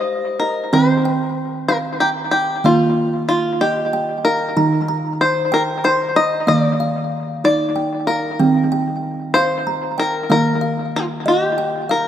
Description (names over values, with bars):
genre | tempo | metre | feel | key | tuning
world meditative, meditative tuned percussion | 63 BPM (dotted quarters) | 6/8 | straight | Eb major | A4 = 440 Hz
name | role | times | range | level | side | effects
bluegrass banjo | melody | 0.0-12.1 s | F4 to Eb5 | -18 LUFS | left 1 dB | analog delay
kalimba | arpeggios | 0.0-12.1 s | Eb3 to C6 | -19 LUFS | right 1 dB | analog delay
room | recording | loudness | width
wet plate reverb, RT60 2.4 s | echo-heavy mix | -16 LUFS | side -10 dB against mid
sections
0.7-12.1 A section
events
none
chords
0.0 Ab; 0.7 Cm/Eb; 2.6 Bb5/Eb; 4.6 Eb; 10.3 Bb5/Eb